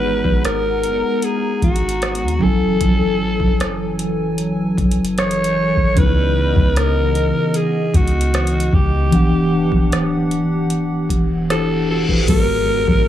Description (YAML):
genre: contemporary R&B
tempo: 76 BPM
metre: 4/4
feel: straight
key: G# phrygian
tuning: A4 = 439 Hz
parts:
  - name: breathy alto saxophone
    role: melody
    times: 0.0-13.1 s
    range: F#4 to C#5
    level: -20 LUFS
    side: left 1 dB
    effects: digital delay
  - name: mellow tine electric piano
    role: accompaniment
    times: 0.0-13.1 s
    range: G#2 to G#5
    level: -21 LUFS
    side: equal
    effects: medium stereo tremolo
  - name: hollow soft pad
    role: sustained chords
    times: 0.0-12.3 s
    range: C#3 to A#5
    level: -24 LUFS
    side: equal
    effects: chorus, sidechain pumping
  - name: soft 808-style bass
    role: bass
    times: 0.0-13.1 s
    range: D1 to D#2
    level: -21 LUFS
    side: equal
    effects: none
  - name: booming analog drum machine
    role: drums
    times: 0.2-13.1 s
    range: crash cymbal, hi-hat, kick drum, rim click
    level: -19 LUFS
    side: equal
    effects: none
  - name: reverse cymbal and impact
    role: sound effects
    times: 11.6-13.1 s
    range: none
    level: -28 LUFS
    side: left 2 dB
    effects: none
room: little or no reverb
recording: none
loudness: -15 LUFS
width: side -11 dB against mid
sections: 0.0-12.3 A section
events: reverse cymbal 11.6-12.3; impact 12.3-13.1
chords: 0.0 G#m9; 2.4 F#m9; 6.0 C#m9; 9.1 Em9; 12.3 G#m9